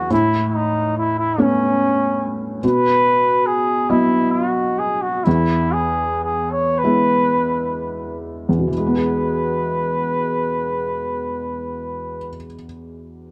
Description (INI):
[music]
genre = celtic folk, Celtic slow air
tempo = 29-49 BPM (dotted quarters)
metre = 6/8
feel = rubato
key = E major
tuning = A4 = 439 Hz
[part]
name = mellow trumpet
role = melody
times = 0.0-12.4 s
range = C#4 to C#5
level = -22 LUFS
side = equal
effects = none
[part]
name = felt-muted upright piano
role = accompaniment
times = 0.0-13.3 s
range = E2 to D#5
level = -23 LUFS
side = equal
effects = none
[sound]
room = moderate spring reverb, RT60 1.6 s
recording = none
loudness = -19 LUFS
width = mono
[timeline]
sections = 0.0-8.7 A section; 8.7-12.7 B section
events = slowing down 2.6-8.7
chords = 0.1 Aadd9; 2.6 B; 5.3 E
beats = | 0.11 1.38 | 2.63 3.90 | 5.26 6.83 | 8.72 10.71